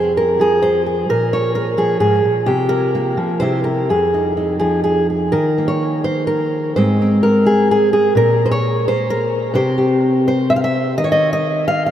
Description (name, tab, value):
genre	folk, solo fingerstyle acoustic guitar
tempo	128 BPM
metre	3/4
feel	rubato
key	unclear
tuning	A4 = 438 Hz
part	fingerpicked steel-string acoustic guitar	solo	0.0-11.9 s	F2 to F5	-14 LUFS	equal	none
room	wet huge ambient reverb, RT60 8.0 s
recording	in a vast, echoing space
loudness	-14 LUFS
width	side -10 dB against mid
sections	0.0-5.3 A section; 5.3-11.9 B section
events	none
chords	0.0 Fm; 1.1 Bbm; 2.5 C7sus4; 3.4 C7; 3.9 Fm7; 5.3 Eb5; 6.8 Ab; 8.2 N.C.; 9.5 C5; 11.0 N.C.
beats	0.17 0.63 | 1.09 1.55 2.01 | 2.47 2.94 3.41 | 3.88 4.36 4.84 | 5.33 5.81 6.29 | 6.76 7.23 7.69 | 8.15 8.62 9.08 | 9.55 10.02 10.49 | 10.98 11.45